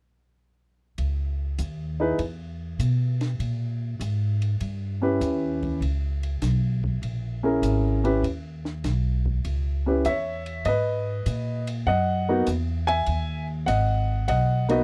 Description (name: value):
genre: jazz piano trio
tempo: 99 BPM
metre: 4/4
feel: swing 68% on 8ths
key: G# minor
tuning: A4 = 441 Hz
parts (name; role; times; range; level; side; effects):
- upright bass; bass; 1.0-14.8 s; G#1 to B2; -28 LUFS; equal; none
- compact cocktail drum kit; drums; 1.0-14.8 s; hi-hat, kick drum, ride cymbal, snare drum; -43 LUFS; equal; none
- warm upright piano; melody; 2.0-14.8 s; A#3 to G#5; -27 LUFS; equal; none
room: little or no reverb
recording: dry, close 1970s-style studio recording, faint mains hum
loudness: -26 LUFS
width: mono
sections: 1.0-10.7 A section; 10.7-14.8 B section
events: none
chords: 1.0 C#m9; 3.4 D#7b9b13; 5.8 A#m7b5; 8.2 D#7(#5, no3); 10.7 G#m9